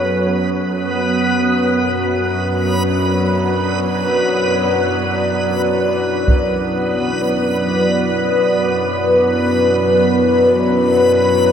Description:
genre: dark ambient drone.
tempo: free time.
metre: none.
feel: none.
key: unclear.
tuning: A4 = 440 Hz.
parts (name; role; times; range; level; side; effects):
bowed-like drone; drone; 0.0-11.5 s; F#2 to F#3; -19 LUFS; equal; built-in reverb.
backwards swelling texture; texture; 0.0-11.5 s; B3 to B4; -19 LUFS; equal; built-in reverb.
dark analog pad; sustained chords; 2.0-11.5 s; F#3 to D5; -16 LUFS; equal; chorus, phaser.
taiko ensemble; percussion; 6.3-6.5 s; none; -15 LUFS; right 1 dB; low-pass filter on perc.
room: wet huge ambient reverb, RT60 7.8 s.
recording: none.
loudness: -14 LUFS.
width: side -8 dB against mid.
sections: 0.0-11.5 A section.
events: filter sweep on synth drone 0.0-11.5.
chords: 0.4 Bm/F#.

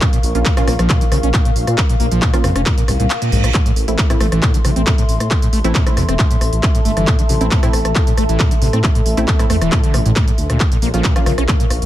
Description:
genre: driving peak-time techno.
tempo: 136 BPM.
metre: 4/4.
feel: straight.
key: A phrygian.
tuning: A4 = 440 Hz.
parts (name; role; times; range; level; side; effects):
overdriven acid bass; riff; 0.0-11.7 s; G#2 to Db4; -21 LUFS; equal; distortion, wide subtle chorus, sidechain pumping, ping-pong delay.
electronic kick drum; drums; 0.0-11.6 s; none; -15 LUFS; equal; none.
techno drum kit; drums; 0.0-11.9 s; handclaps, hi-hat, rim click; -22 LUFS; equal; none.
warbly tape-like pad; texture; 0.0-11.9 s; A4 to Db6; -24 LUFS; left 1 dB; chorus, built-in reverb, sidechain pumping.
dark detuned saw bass; bass; 0.2-11.9 s; E1 to Bb2; -17 LUFS; equal; sidechain pumping.
filtered dub chord stab; stabs; 0.3-11.3 s; A3 to F4; -24 LUFS; right 1 dB; chorus, sidechain pumping, ping-pong delay.
reverse cymbal; sound effects; 3.0-3.5 s; none; -28 LUFS; right 6 dB; none.
room: digital ambience.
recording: none.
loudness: -13 LUFS.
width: side -13 dB against mid.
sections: 0.0-11.9 A section.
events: reverse cymbal 3.0-3.5; kick drops out 3.1-3.5.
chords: 0.0 Bbm; 3.5 Am; 10.6 Bbm.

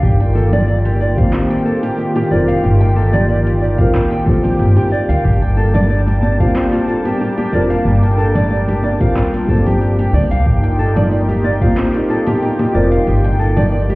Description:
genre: organic downtempo.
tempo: 92 BPM.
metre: 4/4.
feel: swing 53% on 16ths.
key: unclear.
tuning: A4 = 440 Hz.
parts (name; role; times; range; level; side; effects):
warm analog pad; sustained chords; 0.0-13.9 s; Eb3 to A5; -20 LUFS; equal; chorus, sidechain pumping.
nylon-string guitar; arpeggios; 0.0-13.9 s; F4 to G5; -20 LUFS; equal; tape echo.
upright bass; bass; 0.0-13.9 s; F1 to D2; -15 LUFS; equal; tube saturation, sidechain pumping.
afro-pop drum kit; drums; 0.0-13.9 s; cabasa, congas, handclaps, hi-hat; -22 LUFS; equal; studio reverb.
electronic kick drum; drums; 0.0-11.7 s; none; -16 LUFS; equal; studio reverb.
drifting glass-harmonics texture; texture; 0.0-13.9 s; G4 to G5; -30 LUFS; equal; chorus, built-in reverb.
felt-muted upright piano; accompaniment; 1.2-12.9 s; G3 to Bb4; -20 LUFS; left 1 dB; sidechain pumping, tape echo.
congas; percussion; 5.8-13.9 s; none; -24 LUFS; equal; none.
room: studio reverb.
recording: heard muffled through a wall, stone room reverb, EQ.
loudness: -12 LUFS.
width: side -21 dB against mid.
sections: 0.0-13.9 A section.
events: none.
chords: 0.0 Ebadd9; 5.2 Gm; 10.5 Ebadd9.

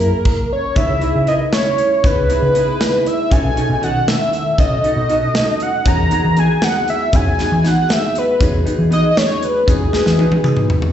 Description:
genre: progressive instrumental, band music in an uneven meter.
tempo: 236 BPM (eighths).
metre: 5/8.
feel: straight.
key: unclear.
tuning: A4 = 440 Hz.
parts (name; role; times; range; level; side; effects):
wide unison lead; melody; 0.0-10.7 s; G#4 to A#5; -17 LUFS; equal; slapback echo, plate reverb.
vintage hollow-body jazz guitar; accompaniment; 0.0-10.9 s; D#3 to B4; -23 LUFS; equal; double-tracked left and right, slapback echo.
mellow electric guitar; arpeggios; 0.0-10.8 s; D#3 to E4; -26 LUFS; right 3 dB; phaser, slapback echo, plate reverb.
hollow-body short-scale picked electric bass; bass; 0.0-10.3 s; B1 to E3; -17 LUFS; equal; none.
modern studio drum kit; drums; 0.0-10.9 s; crash cymbal, hi-hat, kick drum, snare drum, toms; -18 LUFS; equal; none.
egg shaker; percussion; 0.8-10.7 s; none; -41 LUFS; left 2 dB; none.
room: moderate club reverb, RT60 0.6 s.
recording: live gig heard through the venue's PA, recital hall reverb, nothing above 8.0 kHz.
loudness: -13 LUFS.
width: side -10 dB against mid.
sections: 0.8-10.9 A section.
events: drum fill 9.9-10.9.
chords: 0.0 F#7; 0.8 C#m7; 3.3 B7; 5.9 Emaj7.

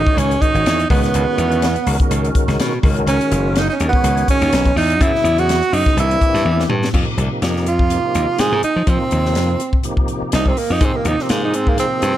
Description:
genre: electric jazz fusion.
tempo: 124 BPM.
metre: 4/4.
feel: swing 55% on 16ths.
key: F minor from 6.9 s.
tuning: A4 = 440 Hz.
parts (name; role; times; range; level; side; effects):
breathy tenor saxophone; melody; 0.0-12.2 s; Bb3 to Ab4; -18 LUFS; right 3 dB; slapback echo.
tonewheel organ; accompaniment; 0.0-12.2 s; C3 to C#5; -24 LUFS; left 1 dB; slow rotary speaker, overdrive, chorus vibrato.
glassy slap bass; bass; 0.0-12.1 s; F#1 to F3; -19 LUFS; left 1 dB; none.
crisp fusion drum kit; drums; 0.1-12.1 s; crash cymbal, hi-hat, kick drum, snare drum, toms; -19 LUFS; left 1 dB; none.
room: light reverb, small room ambience.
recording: dark, warm production.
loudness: -14 LUFS.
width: side -12 dB against mid.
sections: 0.0-6.9 A section; 6.9-12.2 B section.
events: drum fill 6.5-6.9; tenor saxophone solo 6.9-12.2.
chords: 0.0 C#madd9; 0.9 F#7sus4/C#; 2.8 G#9sus4; 5.0 F#7sus4; 6.0 C7; 6.9 F7sus2; 10.8 Abmaj9.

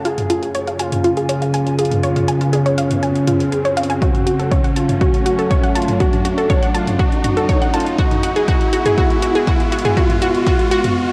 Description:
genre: melodic techno.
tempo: 121 BPM.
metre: 4/4.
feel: straight.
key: F# harmonic minor.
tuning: A4 = 441 Hz.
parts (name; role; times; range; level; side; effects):
dark analog pad; sustained chords; 0.0-11.1 s; C#3 to G#5; -25 LUFS; equal; chorus, phaser, sidechain pumping.
bowed-like drone; drone; 0.0-11.0 s; F#2 to C#3; -31 LUFS; equal; built-in reverb, phaser, sidechain pumping.
riser and reverse cymbal; sound effects; 0.0-11.1 s; none; -28 LUFS; equal; none.
expressive portamento lead; melody; 0.1-10.9 s; C#4 to G#4; -26 LUFS; equal; subtle chorus, vintage 12-bit sampler grit, analog delay.
unison pluck; arpeggios; 0.1-10.8 s; E#4 to A5; -22 LUFS; equal; sidechain pumping, tape echo.
punchy analog drum machine; drums; 0.1-10.9 s; hi-hat, toms; -27 LUFS; equal; overdrive, cassette tape.
electronic kick drum; drums; 4.0-10.6 s; none; -20 LUFS; equal; cassette tape.
room: moderate lush hall reverb, RT60 1.8 s, digital ambience.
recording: home recording on cassette.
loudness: -17 LUFS.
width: mono.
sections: 0.0-11.1 A section.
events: build-up 0.0-11.1; riser 0.0-11.1; filter sweep on synth arpeggio sound 0.0-11.1; reverse cymbal 11.0.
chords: 0.1 C#; 4.0 F#m; 8.0 F#sus24.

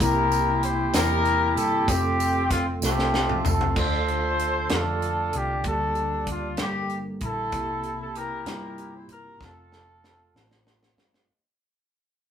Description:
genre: slow gospel.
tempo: 64 BPM (dotted quarters).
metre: 6/8.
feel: straight.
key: F major.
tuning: A4 = 441 Hz.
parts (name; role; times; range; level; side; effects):
warm horn section; melody; 0.0-10.7 s; A3 to C5; -25 LUFS; left 1 dB; none.
mellow tine electric piano; accompaniment; 0.0-11.3 s; C3 to A5; -31 LUFS; equal; medium stereo tremolo.
hollow-body short-scale fingered electric bass; bass; 0.0-11.3 s; F1 to G2; -30 LUFS; equal; none.
tight funk drum kit; drums; 0.0-11.3 s; crash cymbal, hi-hat, kick drum, snare drum, toms; -28 LUFS; equal; none.
tambourine; percussion; 0.0-3.7 s; none; -36 LUFS; right 5 dB; none.
room: moderate studio reverb, RT60 0.6 s.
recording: rough rehearsal-room recording.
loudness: -22 LUFS.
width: side -8 dB against mid.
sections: 0.0-3.8 A section; 3.8-11.3 B section.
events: drum fill 2.8-3.8, 9.4-11.3; fade-out 3.8-11.3; tine electric piano fill 10.3-11.3.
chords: 0.0 C7; 1.9 F; 3.8 Dm; 5.6 Gm/D; 7.5 C7; 9.4 F.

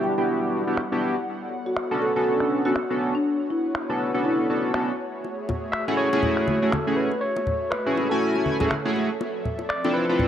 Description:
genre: deep house.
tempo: 121 BPM.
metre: 4/4.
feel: swing 57% on 16ths.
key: unclear.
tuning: A4 = 440 Hz.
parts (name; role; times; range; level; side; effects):
marimba with soft mallets; melody; 0.0-5.0 s; D4 to G5; -27 LUFS; left 1 dB; analog delay.
airy breathy pad; sustained chords; 0.0-10.3 s; F3 to F#5; -32 LUFS; equal; chorus.
chorused polysynth; stabs; 0.0-10.3 s; A3 to G#5; -24 LUFS; equal; tape echo.
electronic finger snaps; drums; 0.8-9.8 s; none; -31 LUFS; equal; low-pass filter on hats, studio reverb, low-pass filter on snare, low-pass filter on cymbals.
bongos and congas; percussion; 5.2-10.3 s; none; -29 LUFS; left 2 dB; none.
overdriven tine electric piano; melody; 5.7-10.3 s; A4 to E5; -27 LUFS; left 1 dB; analog delay.
room: moderate digital room reverb, RT60 1.2 s, digital ambience.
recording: dry, gritty hardware recording, cassette tape.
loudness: -22 LUFS.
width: side -10 dB against mid.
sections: 0.0-10.3 A section.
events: none.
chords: 0.0 Em9; 1.3 Bm9; 5.0 F#m9; 9.2 Dm9.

